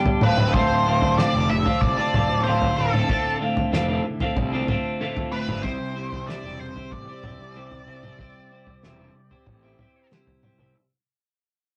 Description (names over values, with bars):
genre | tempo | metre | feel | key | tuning
psychedelic rock | 94 BPM | 4/4 | straight | unclear | A4 = 440 Hz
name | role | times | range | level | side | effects
twelve-string electric guitar | riff | 0.0-10.7 s | D2 to C5 | -27 LUFS | equal | phaser
cloth-damped thuddy drum kit | drums | 0.1-10.7 s | kick drum, snare drum, toms | -28 LUFS | equal | none
octave-fuzz lead guitar | melody | 0.2-10.1 s | A4 to E5 | -29 LUFS | equal | wah, distortion
fuzz picked electric bass | bass | 0.2-10.7 s | D1 to C2 | -30 LUFS | equal | overdrive
room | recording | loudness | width
wet studio reverb, RT60 0.5 s | rough rehearsal-room recording, warm saturation | -22 LUFS | mono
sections
0.0-10.8 A section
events
fade-out 0.0-10.8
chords
0.2 Dm7; 5.6 Cadd9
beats
| 0.54 1.18 1.82 2.46 | 3.09 3.73 4.37 5.01 | 5.65 6.29 6.92 7.56 | 8.20 8.84 9.48 10.12